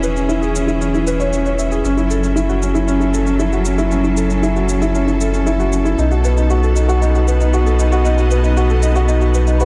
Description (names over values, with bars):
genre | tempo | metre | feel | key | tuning
piano and strings electronica | 116 BPM | 4/4 | straight | unclear | A4 = 440 Hz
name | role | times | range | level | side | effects
bright studio string section | sustained chords | 0.0-9.7 s | B2 to E5 | -26 LUFS | equal | none
felt-muted upright piano | riff | 0.0-9.7 s | C#4 to E5 | -20 LUFS | equal | tape echo
warm sub bass | bass | 0.0-9.7 s | E1 to B1 | -19 LUFS | equal | none
shaker | drums | 0.0-9.7 s | none | -34 LUFS | equal | studio ambience
clear violin | melody | 9.6-9.7 s | B4 | -21 LUFS | equal | low-pass filter
room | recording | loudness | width
light reverb, small room ambience | dark, warm production | -16 LUFS | mono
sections
0.0-9.7 A section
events
none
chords
0.0 E6; 1.8 F#m7; 6.0 B7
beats
0.29 0.81 1.33 | 1.84 2.36 2.88 3.40 | 3.91 4.43 4.95 5.46 | 5.98 6.50 7.02 7.53 | 8.05 8.57 9.09 9.60